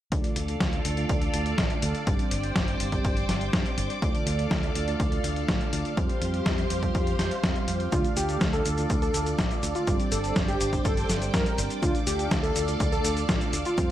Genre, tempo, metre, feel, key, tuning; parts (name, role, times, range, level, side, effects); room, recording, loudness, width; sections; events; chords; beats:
italo disco; 123 BPM; 4/4; straight; D minor; A4 = 440 Hz
string machine, full ensemble; sustained chords; 0.1-13.9 s; G4 to D6; -33 LUFS; equal; phaser, ensemble chorus
mellow synth brass; stabs; 0.1-13.9 s; D3 to F5; -33 LUFS; right 3 dB; chorus
fingered electric bass with an envelope filter; bass; 0.1-13.9 s; G1 to G2; -31 LUFS; equal
dusty soul sampler-style drum kit; drums; 0.1-13.9 s; cabasa, hi-hat, snare drum; -30 LUFS; equal; overdrive, gated reverb
electronic kick drum; drums; 0.1-13.9 s; -29 LUFS; equal
wide unison lead; melody; 7.9-13.9 s; F4 to Bb4; -30 LUFS; equal; tape echo
digital ambience; -24 LUFS; side -12 dB against mid
0.1-13.9 A section
0.1 Dm; 2.1 Gsus4; 4.0 Dm; 6.0 Fsus2; 7.9 Dm; 9.9 Gsus4; 11.8 Dm
| 0.12 0.61 1.09 1.58 | 2.07 2.56 3.04 3.53 | 4.02 4.51 5.00 5.48 | 5.97 6.46 6.95 7.44 | 7.92 8.41 8.90 9.39 | 9.88 10.36 10.85 11.34 | 11.83 12.31 12.80 13.29 | 13.78